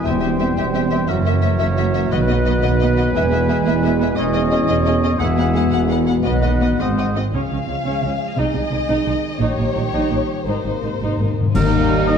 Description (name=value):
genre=cinematic, heroic adventure film score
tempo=116 BPM (dotted quarters)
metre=6/8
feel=straight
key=E major, Db major from 7.4 s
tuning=A4 = 435 Hz
part: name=mellow concert flute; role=second line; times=0.0-7.2, 11.6-12.2 s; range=Bb4 to G#5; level=-29 LUFS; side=left 3 dB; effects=none
part: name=warm oboe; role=second line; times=0.0-7.2, 11.6-12.2 s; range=G#4 to Eb5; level=-28 LUFS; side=right 2 dB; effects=none
part: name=mellow French horn section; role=sustained chords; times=0.0-7.2, 11.5-12.2 s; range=Bb3 to F#4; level=-24 LUFS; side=left 5 dB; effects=none
part: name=mellow trombone section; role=sustained chords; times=0.0-12.2 s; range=C3 to Eb4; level=-26 LUFS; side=right 4 dB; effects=none
part: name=warm trumpet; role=stabs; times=0.0-7.2, 11.6-12.2 s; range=Bb4 to F#5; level=-26 LUFS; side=right 1 dB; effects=none
part: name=warm symphonic violin section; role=melody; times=0.1-12.2 s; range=Eb4 to F#5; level=-26 LUFS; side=left 6 dB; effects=none
part: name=dark studio violin section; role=second line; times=0.1-12.2 s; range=Bb3 to Bb4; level=-32 LUFS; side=left 5 dB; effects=none
part: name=rich symphonic viola section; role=accompaniment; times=0.1-12.2 s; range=G3 to Eb4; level=-26 LUFS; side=right 1 dB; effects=none
part: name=rich symphonic double bass section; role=bass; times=0.1-12.2 s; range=E1 to Eb2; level=-23 LUFS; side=right 3 dB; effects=none
part: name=warm symphonic cello section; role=bass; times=0.1-12.2 s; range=E2 to Eb3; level=-23 LUFS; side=right 2 dB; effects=none
part: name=timpani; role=percussion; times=0.1-2.6, 5.2-7.8, 10.5-12.0 s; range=E2 to Eb3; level=-24 LUFS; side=left 3 dB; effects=none
part: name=cymbal swell, clash cymbals and concert bass drum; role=percussion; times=9.4-12.2 s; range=none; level=-23 LUFS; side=left 1 dB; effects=none
part: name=mellow tuba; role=bass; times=11.6-12.2 s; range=Eb2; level=-24 LUFS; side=right 4 dB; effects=none
room=moderate concert hall reverb, RT60 1.9 s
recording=dark, warm production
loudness=-16 LUFS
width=side -7 dB against mid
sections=0.0-7.4 A section; 7.4-11.6 B section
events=timpani fill 10.5-11.6; band accent 11.6-11.9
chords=0.1 C/E; 1.1 F#7; 2.1 B; 3.2 E; 4.2 C#madd9/E; 5.2 Eadd9; 6.3 B; 6.8 G#7; 7.4 Db; 8.4 Ab/C; 9.4 Eb7/Bb; 10.5 Abadd9; 11.6 Eb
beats=| 0.06 0.58 | 1.09 1.61 | 2.13 2.64 | 3.15 3.67 | 4.18 4.70 | 5.21 5.73 | 6.26 6.81 | 7.35 7.87 | 8.39 8.90 | 9.41 9.94 | 10.47 11.01 | 11.56 12.09